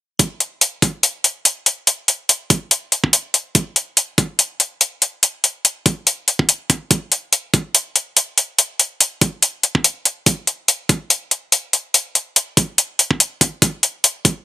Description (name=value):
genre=dubstep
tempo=143 BPM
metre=4/4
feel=swing 55% on 16ths, half-time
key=none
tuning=none
part: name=electronic hi-hat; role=drums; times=0.2-14.3 s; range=none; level=-13 LUFS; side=left 1 dB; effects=none
part: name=electronic kick drum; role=drums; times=0.2-14.3 s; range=none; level=-16 LUFS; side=right 1 dB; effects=high-pass filter on kick
room=little or no reverb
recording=none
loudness=-15 LUFS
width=side -14 dB against mid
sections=0.2-14.4 A section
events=none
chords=none